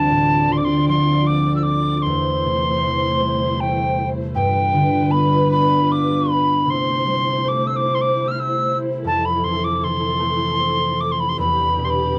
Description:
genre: celtic folk, Celtic slow air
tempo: 77 BPM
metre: 3/4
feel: rubato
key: unclear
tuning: A4 = 440 Hz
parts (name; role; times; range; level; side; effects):
- wooden whistle; melody; 0.0-12.2 s; G5 to F6; -22 LUFS; equal; none
- concert harp; accompaniment; 0.0-12.2 s; D2 to G4; -23 LUFS; equal; none
- dark studio string section; sustained chords; 0.0-12.2 s; E3 to D5; -28 LUFS; equal; none
room: wet booth ambience, RT60 0.2 s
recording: none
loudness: -19 LUFS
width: mono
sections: 0.0-12.2 A section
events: none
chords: 0.0 Dm7; 2.0 C6/E; 4.3 G7; 6.7 C6; 9.0 Fmaj7; 11.4 Em7

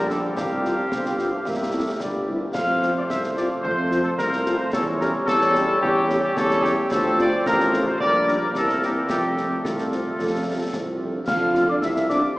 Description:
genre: military-style march for wind band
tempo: 110 BPM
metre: 2/4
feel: straight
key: F major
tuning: A4 = 440 Hz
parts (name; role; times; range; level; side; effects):
- mellow trumpet section; melody; 0.0-12.2 s; F4 to F5; -24 LUFS; left 1 dB; none
- mellow woodwind section; second line; 0.0-12.2 s; E4 to F5; -26 LUFS; equal; none
- warm trombone section; sustained chords; 0.0-12.4 s; C3 to C#4; -31 LUFS; equal; none
- mellow tuba; bass; 0.0-12.3 s; G1 to F2; -27 LUFS; right 1 dB; none
- mellow French horn section; accompaniment; 0.1-12.2 s; E3 to G4; -30 LUFS; left 1 dB; none
- concert snare drum, concert bass drum and clash cymbals; drums; 0.1-12.2 s; none; -32 LUFS; equal; none
- mellow euphonium; second line; 9.6-12.2 s; D3 to F4; -26 LUFS; right 1 dB; none
- wooden piccolo; second line; 11.3-12.4 s; C6 to F6; -26 LUFS; left 1 dB; none
room: wet cathedral reverb, RT60 5.7 s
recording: recorded in a church or concert hall, small speaker sound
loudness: -20 LUFS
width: side -19 dB against mid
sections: 0.0-11.3 A section; 11.3-12.4 A section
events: none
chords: 0.4 Csus4; 1.5 C; 2.6 F; 4.7 A7/E; 6.9 Dm7; 8.0 Gm/Bb; 8.6 C7; 9.1 F

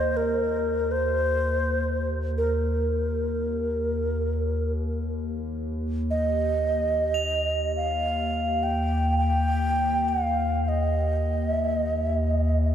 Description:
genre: world meditative, free-time meditation music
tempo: free time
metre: none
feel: none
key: Eb major pentatonic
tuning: A4 = 440 Hz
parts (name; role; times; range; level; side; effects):
- breathy xiao; melody; 0.0-12.7 s; Bb4 to G5; -26 LUFS; right 1 dB; diffuse ambient delay
- warbly tape-like pad; drone; 0.0-12.7 s; Eb2; -26 LUFS; left 1 dB; chorus, built-in reverb, phaser
- crotales; texture; 7.1-12.7 s; F7; -35 LUFS; equal; none
room: wet cathedral reverb, RT60 4.6 s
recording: dark, warm production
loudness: -23 LUFS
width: side -9 dB against mid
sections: 0.0-12.7 A section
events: none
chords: none

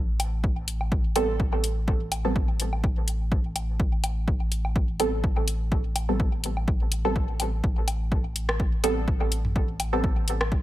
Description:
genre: dub techno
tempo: 125 BPM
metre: 4/4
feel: swing 55% on 16ths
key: A minor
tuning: A4 = 440 Hz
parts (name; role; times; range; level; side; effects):
- warm sub bass; bass; 0.0-10.6 s; A1; -29 LUFS; equal; tube saturation, sidechain pumping
- punchy analog drum machine; drums; 0.2-10.5 s; hi-hat, rim click; -28 LUFS; left 2 dB; overdrive
- electronic woodblock and toms; percussion; 0.2-10.5 s; none; -35 LUFS; equal; sidechain pumping on perc, sidechain pumping on toms, dub echo
- electronic kick drum; drums; 0.4-10.6 s; none; -26 LUFS; equal; overdrive
- filtered dub chord stab; stabs; 1.2-10.1 s; G3 to A4; -29 LUFS; right 2 dB; chorus, phaser, sidechain pumping, dub echo
room: digital ambience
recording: none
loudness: -23 LUFS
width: side -15 dB against mid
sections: 0.0-10.6 A section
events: none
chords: none

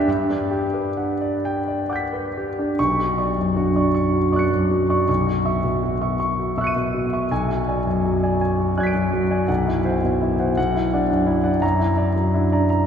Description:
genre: classical, impressionist solo piano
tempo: 43-57 BPM (dotted quarters)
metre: 6/8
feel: rubato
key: B minor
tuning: A4 = 440 Hz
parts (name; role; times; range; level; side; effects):
- warm concert grand piano; solo; 0.0-12.9 s; B1 to D#7; -18 LUFS; equal; none
room: wet cathedral reverb, RT60 4.2 s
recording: heard from further back in the room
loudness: -18 LUFS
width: side -8 dB against mid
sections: 0.0-2.8 A section; 2.8-12.9 B section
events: none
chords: 0.1 Gmaj7; 2.8 Bmadd9; 5.1 C#m11/B; 7.3 Bm6; 9.5 Cmaj7#11/B; 10.6 Dadd9/B; 11.6 F#aug7

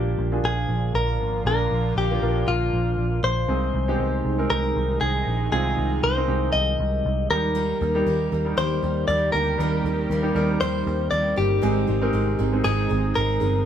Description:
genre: piano-driven pop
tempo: 118 BPM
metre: 4/4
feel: swing 56% on 16ths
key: unclear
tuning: A4 = 439 Hz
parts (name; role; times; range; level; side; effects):
- direct-recorded clean electric guitar; melody; 0.0-13.7 s; F4 to Eb5; -25 LUFS; left 2 dB; none
- clear baby grand piano; accompaniment; 0.0-13.7 s; Ab2 to Bb4; -28 LUFS; right 2 dB; none
- sweeping resonant pad; sustained chords; 0.0-13.7 s; C3 to G4; -31 LUFS; equal; chorus
- vintage muted picked electric bass; bass; 0.0-13.6 s; G1 to Eb2; -25 LUFS; equal; none
- picked steel-string acoustic guitar; riff; 7.5-13.7 s; Ab2 to Bb4; -30 LUFS; right 5 dB; none
room: moderate studio reverb, RT60 0.5 s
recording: band playing live in one room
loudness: -20 LUFS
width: side -9 dB against mid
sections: 0.0-13.7 A section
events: none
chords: 0.0 Bb; 3.5 Ab; 7.3 Eb; 11.6 Ab

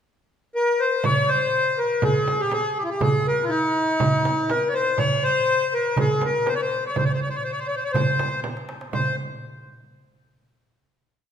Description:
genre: Arabic maqam ensemble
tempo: 122 BPM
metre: 4/4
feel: straight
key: C maqam huzam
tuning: A4 = 439 Hz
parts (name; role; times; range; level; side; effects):
- accordion; melody; 0.6-9.2 s; E4-50c to D5-50c; -21 LUFS; left 2 dB; none
- darbuka; percussion; 1.0-9.2 s; none; -27 LUFS; right 2 dB; none
- frame drum; percussion; 1.0-9.2 s; none; -29 LUFS; right 4 dB; none
room: wet recital hall reverb, RT60 1.7 s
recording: minimal, uncompressed stereo recording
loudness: -20 LUFS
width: side -8 dB against mid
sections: 0.0-1.0 pickup bar; 1.0-8.9 A section; 8.9-10.9 final note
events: drum fill 8.4-8.9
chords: none

